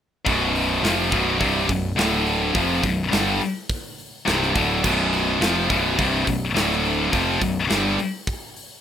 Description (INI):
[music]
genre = heavy metal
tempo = 105 BPM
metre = 4/4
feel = straight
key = B phrygian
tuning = A4 = 440 Hz
[part]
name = heavy high-gain guitar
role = riff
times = 0.2-8.0 s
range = B1 to G3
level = -21 LUFS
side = left 5 dB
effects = distortion
[part]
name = distorted electric guitar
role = riff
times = 0.3-8.0 s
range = B1 to G3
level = -25 LUFS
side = right 14 dB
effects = overdrive
[part]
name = overdriven picked electric bass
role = bass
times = 0.3-8.0 s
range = B0 to G1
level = -27 LUFS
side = right 1 dB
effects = none
[part]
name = tight metal drum kit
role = drums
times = 0.3-8.7 s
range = crash cymbal, hi-hat, kick drum, snare drum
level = -27 LUFS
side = equal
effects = none
[sound]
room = light reverb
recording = rough home demo mix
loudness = -19 LUFS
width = side -9 dB against mid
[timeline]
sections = 0.3-8.8 A section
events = none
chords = 0.3 B5; 2.0 D5; 2.5 Bm; 6.6 D5; 7.1 Bm